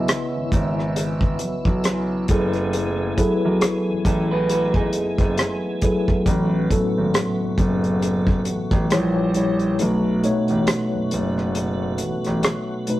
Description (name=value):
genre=R&B, neo-soul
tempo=68 BPM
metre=4/4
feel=swing 56% on 16ths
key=unclear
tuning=A4 = 440 Hz
part: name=mellow tine electric piano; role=accompaniment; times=0.0-13.0 s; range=A2 to E5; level=-23 LUFS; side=left 1 dB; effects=medium stereo tremolo
part: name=tonewheel organ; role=sustained chords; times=0.0-13.0 s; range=C#3 to G#5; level=-30 LUFS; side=right 1 dB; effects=fast rotary speaker, chorus vibrato
part: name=clear concert grand piano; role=bass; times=0.0-12.4 s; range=F#1 to B1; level=-24 LUFS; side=equal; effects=none
part: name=cloth-damped thuddy drum kit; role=drums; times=0.1-13.0 s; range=hi-hat, kick drum, rim click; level=-22 LUFS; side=equal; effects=none
part: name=electric guitar through a small old amp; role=second line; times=4.1-6.0 s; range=D#4 to B4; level=-25 LUFS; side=right 2 dB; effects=tremolo
room=light reverb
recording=rough rehearsal-room recording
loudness=-18 LUFS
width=side -15 dB against mid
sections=0.0-13.0 A section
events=kick muted 9.8-13.0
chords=0.0 C#m9; 2.3 F#m11; 6.3 A69; 8.9 A#dim7; 9.8 B7